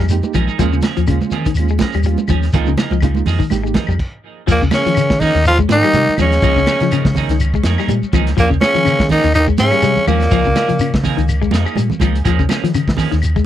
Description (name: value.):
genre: afrobeat.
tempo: 124 BPM.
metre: 4/4.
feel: swing 56% on 16ths.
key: Eb mixolydian.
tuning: A4 = 440 Hz.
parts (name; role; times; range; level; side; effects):
clean electric guitar; arpeggios; 0.0-13.5 s; Db3 to Ab3; -20 LUFS; left 10 dB; none.
semi-hollow electric guitar; stabs; 0.0-13.1 s; F3 to Ab4; -24 LUFS; right 9 dB; lush chorus, tape echo.
fingered electric bass; bass; 0.0-13.4 s; Ab1 to Eb3; -17 LUFS; equal; none.
crunchy breakbeat drum kit; drums; 0.0-13.5 s; crash cymbal, hi-hat, kick drum, snare drum; -20 LUFS; equal; none.
bright reed electric piano; accompaniment; 0.1-3.8 s; Ab3 to G4; -22 LUFS; right 13 dB; fast tremolo.
shekere; percussion; 0.1-13.5 s; none; -24 LUFS; left 2 dB; none.
congas; percussion; 0.2-13.1 s; none; -22 LUFS; right 6 dB; none.
claves; percussion; 0.3-13.4 s; none; -32 LUFS; left 9 dB; none.
raspy tenor saxophone; melody; 4.5-11.0 s; Bb3 to F4; -16 LUFS; equal; tape echo.
trombone with bucket mute; second line; 4.5-11.0 s; Bb2 to F3; -22 LUFS; right 3 dB; none.
room: little or no reverb.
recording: dry, close 1970s-style studio recording.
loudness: -12 LUFS.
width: side -12 dB against mid.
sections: 0.0-4.5 A section; 4.5-13.5 B section.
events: stop 4.0-4.5.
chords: 0.0 Db69 (rootless); 0.6 Eb9sus4; 2.5 Db69; 4.5 Eb9sus4; 6.4 Db69; 8.4 Eb9sus4; 10.3 Db69; 12.3 Eb9sus4.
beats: 0.11 | 0.59 1.08 1.57 2.05 | 2.54 3.03 3.51 4.00 | 4.49 4.97 5.46 5.94 | 6.43 6.91 7.40 7.88 | 8.37 8.86 9.34 9.83 | 10.31 10.80 11.29 11.77 | 12.26 12.74 13.23.